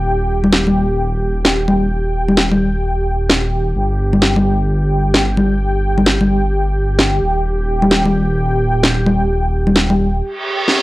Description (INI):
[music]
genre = UK garage, two-step garage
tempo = 130 BPM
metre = 4/4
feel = swing 62% on 16ths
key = unclear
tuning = A4 = 442 Hz
[part]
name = warm analog pad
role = sustained chords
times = 0.0-10.8 s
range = G4 to G5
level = -20 LUFS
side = equal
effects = chorus
[part]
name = dark detuned saw bass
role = bass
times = 0.0-10.2 s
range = Eb1 to G1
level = -18 LUFS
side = equal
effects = none
[part]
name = electronic congas and snare drum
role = drums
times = 0.4-10.8 s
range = none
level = -14 LUFS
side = left 1 dB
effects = none
[part]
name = reverse cymbal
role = sound effects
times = 10.3-10.8 s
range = none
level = -17 LUFS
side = right 2 dB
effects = none
[sound]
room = little or no reverb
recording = dry, gritty hardware recording, transformer saturation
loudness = -13 LUFS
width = side -18 dB against mid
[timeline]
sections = 0.0-10.8 A section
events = break 10.2-10.8; reverse cymbal 10.3-10.8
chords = 0.0 Eb; 3.8 N.C.; 7.2 Eb